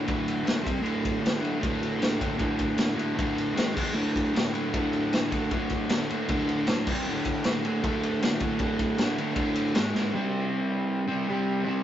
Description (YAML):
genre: garage rock duo or trio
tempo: 155 BPM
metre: 4/4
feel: straight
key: unclear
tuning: A4 = 442 Hz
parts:
  - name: overdriven electric guitar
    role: riff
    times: 0.0-11.8 s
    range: D2 to C4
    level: -26 LUFS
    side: equal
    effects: none
  - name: raw garage drum kit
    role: drums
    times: 0.1-10.0 s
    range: crash cymbal, kick drum, ride cymbal, snare drum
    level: -29 LUFS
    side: equal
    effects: none
room: moderate studio reverb, RT60 0.5 s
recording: rough rehearsal-room recording, nothing above 7.7 kHz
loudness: -24 LUFS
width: side -11 dB against mid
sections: 0.0-10.1 A section; 10.1-11.8 B section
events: drum fill 9.9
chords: 0.0 D5; 0.7 C5; 0.9 D5; 3.6 G#5; 4.0 D5; 6.9 C5; 7.1 D5; 9.7 G#5; 10.1 C5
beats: 0.09 0.47 | 0.86 1.25 1.63 2.02 | 2.41 2.79 3.18 3.57 | 3.96 4.34 4.73 5.12 | 5.51 5.90 6.28 6.67 | 7.06 7.44 7.83 8.21 | 8.60 8.98 9.37 9.75 | 10.13 10.51 10.90 11.28 | 11.66